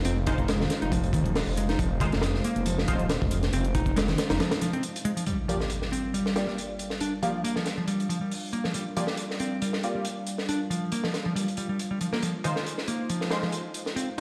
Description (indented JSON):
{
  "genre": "breakbeat, breaks",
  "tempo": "138 BPM",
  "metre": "4/4",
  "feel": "swing 54% on 16ths",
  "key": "G phrygian",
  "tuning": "A4 = 440 Hz",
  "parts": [
    { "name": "warbly tape-like pad", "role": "sustained chords", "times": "0.0-14.2 s", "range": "G3 to F5", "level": "-38 LUFS", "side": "equal", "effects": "chorus, built-in reverb, sidechain pumping" },
    { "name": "crunchy breakbeat drum kit", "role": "drums", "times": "0.0-14.1 s", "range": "hi-hat, kick drum, snare drum", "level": "-33 LUFS", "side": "equal", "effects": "high-pass filter on kick, high-pass filter on hats, high-pass filter on snare, high-pass filter on room" },
    { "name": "modern bright picked electric bass", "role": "riff", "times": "0.1-14.2 s", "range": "Eb3 to Eb4", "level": "-32 LUFS", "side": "equal", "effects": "overdrive, vintage 12-bit sampler grit, low-pass filter, delay" },
    { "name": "detuned saw bass", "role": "bass", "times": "0.1-4.4 s", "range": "Eb1 to F1", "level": "-31 LUFS", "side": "equal", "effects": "none" },
    { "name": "electronic hi-hat", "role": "drums", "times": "0.1-5.3 s", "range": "none", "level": "-47 LUFS", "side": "equal", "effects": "none" },
    { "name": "band-passed chord stab", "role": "stabs", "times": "0.3-13.4 s", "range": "Ab3 to D5", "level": "-37 LUFS", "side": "equal", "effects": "lush chorus, delay" },
    { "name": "impact", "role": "sound effects", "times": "5.3-7.0 s", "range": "none", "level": "-39 LUFS", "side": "equal", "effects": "none" }
  ],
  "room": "moderate lush hall reverb, RT60 1.8 s, small room ambience",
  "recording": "played on a big sound system in a bare room, stone room reverb, vinyl crackle",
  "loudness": "-28 LUFS",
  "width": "mono",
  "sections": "0.0-5.3 A section; 5.3-14.2 B section",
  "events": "break 4.4-5.3; impact 5.3-7.0; filter sweep on synth stab 5.3-14.2",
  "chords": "0.0 Fm7; 5.3 Gm7; 12.2 Fm7",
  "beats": "| 0.05 0.49 0.92 1.36 | 1.79 2.23 2.66 3.10 | 3.53 3.97 4.40 4.84 | 5.27 5.71 6.14 6.58 | 7.01 7.44 7.88 8.31 | 8.75 9.18 9.62 10.05 | 10.49 10.92 11.36 11.79 | 12.23 12.66 13.10 13.53 | 13.97"
}